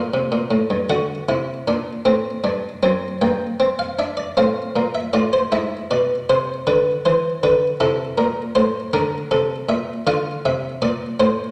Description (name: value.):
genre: classical, baroque-style 3-part fugue for harpsichord.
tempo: 52 BPM (dotted quarters).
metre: 12/8.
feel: straight.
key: unclear.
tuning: A4 = 441 Hz.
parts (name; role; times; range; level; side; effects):
buff-stop harpsichord; solo; 0.0-11.5 s; F#2 to G5; -20 LUFS; equal; none.
room: wet recital hall reverb, RT60 1.5 s.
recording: none.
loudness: -20 LUFS.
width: mono.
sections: 0.9-11.5 A section.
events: none.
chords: 0.0 F; 0.9 D7; 3.2 Gm; 5.5 E7(no3); 7.8 Am; 10.1 Dm.